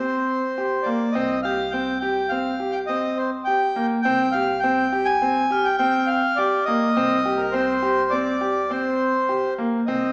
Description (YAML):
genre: contemporary instrumental, chamber music in an uneven meter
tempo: 103 BPM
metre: 5/4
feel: straight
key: C minor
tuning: A4 = 439 Hz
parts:
  - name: accordion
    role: melody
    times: 0.0-10.1 s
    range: Bb4 to Ab5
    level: -25 LUFS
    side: equal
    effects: none
  - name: clear baby grand piano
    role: arpeggios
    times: 0.0-10.1 s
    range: Bb3 to G4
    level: -26 LUFS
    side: equal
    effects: none
  - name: upright bass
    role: bass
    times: 0.0-10.1 s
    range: C2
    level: -46 LUFS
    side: equal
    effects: none
  - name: crotales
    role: texture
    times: 1.5-8.7 s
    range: F6 to Bb6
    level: -36 LUFS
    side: equal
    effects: none
room: wet recital hall reverb, RT60 1.5 s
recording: heard from further back in the room, small speaker sound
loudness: -22 LUFS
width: mono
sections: 0.0-9.9 A section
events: none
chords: 0.0 Cm7